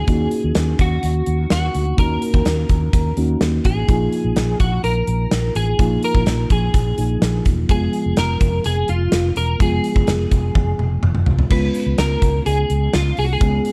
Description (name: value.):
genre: 1980s-style pop.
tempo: 126 BPM.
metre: 4/4.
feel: straight.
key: Eb minor.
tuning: A4 = 441 Hz.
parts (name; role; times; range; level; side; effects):
clean electric guitar; melody; 0.0-13.7 s; F4 to Cb5; -26 LUFS; equal; ensemble chorus, slapback echo.
mellow FM electric piano; accompaniment; 0.0-13.7 s; F3 to Ab4; -26 LUFS; equal; chorus.
fretless electric bass; bass; 0.1-13.6 s; Fb1 to Eb2; -22 LUFS; equal; lush chorus.
gated 80s drum kit; drums; 0.1-13.7 s; crash cymbal, hi-hat, kick drum, snare drum, toms; -22 LUFS; equal; none.
room: little or no reverb.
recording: none.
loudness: -18 LUFS.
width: mono.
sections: 0.0-11.5 A section; 11.5-13.7 B section.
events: drum fill 10.6-11.5.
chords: 0.0 Ebm7; 3.9 Bbsus4; 7.7 Fdim; 11.5 Db7.